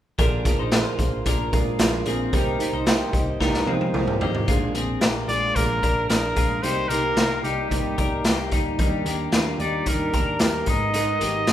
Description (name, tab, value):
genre	jangly indie pop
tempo	112 BPM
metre	4/4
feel	straight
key	unclear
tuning	A4 = 439 Hz
part	dark upright piano	accompaniment	0.2-4.5 s	D4 to Eb5	-30 LUFS	right 7 dB	none
part	fingerpicked steel-string acoustic guitar	accompaniment	0.2-11.5 s	Ab2 to Bb4	-29 LUFS	right 2 dB	none
part	twelve-string electric guitar	arpeggios	0.2-11.5 s	G3 to C5	-28 LUFS	left 5 dB	none
part	vintage muted picked electric bass	bass	0.2-11.5 s	Ab1 to C3	-30 LUFS	equal	none
part	raw garage drum kit	drums	0.2-11.5 s	hi-hat, kick drum, snare drum, toms	-23 LUFS	equal	none
part	clear trumpet	melody	5.3-11.5 s	G4 to Eb5	-25 LUFS	equal	none
room	moderate recital hall reverb, RT60 1.5 s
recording	recorded in a church or concert hall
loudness	-20 LUFS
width	side -11 dB against mid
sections	0.2-4.5 A section; 4.5-11.5 B section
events	drum fill 3.4-4.5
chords	0.2 Bb7; 2.3 Cm7; 4.5 Bb7; 6.6 Cm7; 8.8 Ebmaj7; 10.7 Abmadd9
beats	| 0.18 0.72 1.26 1.79 | 2.33 2.87 3.41 3.94 | 4.48 5.02 5.56 6.10 | 6.63 7.17 7.71 8.25 | 8.79 9.33 9.87 10.41 | 10.95 11.48